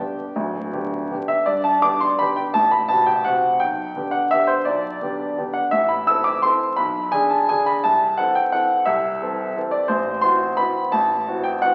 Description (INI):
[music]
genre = classical, piano waltz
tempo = 153-181 BPM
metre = 3/4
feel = rubato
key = G major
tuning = A4 = 436 Hz
[part]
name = warm baby grand piano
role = solo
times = 0.0-11.7 s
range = D1 to E6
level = -20 LUFS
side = equal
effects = none
[sound]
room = wet recital hall reverb, RT60 1.6 s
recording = very old 78 rpm record, vinyl crackle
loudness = -20 LUFS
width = mono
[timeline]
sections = 0.0-1.5 A section; 1.5-11.7 A section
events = none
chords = 0.0 G; 2.6 F#dim/A; 3.6 G/B; 5.7 Am; 6.8 G#dim/B; 7.8 Am/C; 9.9 F#m7b5/A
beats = | 0.36 0.72 1.10 | 1.48 1.84 2.20 | 2.55 2.90 3.26 | 3.61 3.96 4.32 | 4.67 5.02 5.38 | 5.72 6.07 6.43 | 6.78 7.13 7.49 | 7.84 8.19 8.53 | 8.87 9.21 9.56 | 9.90 10.24 10.59 | 10.93 11.27 11.62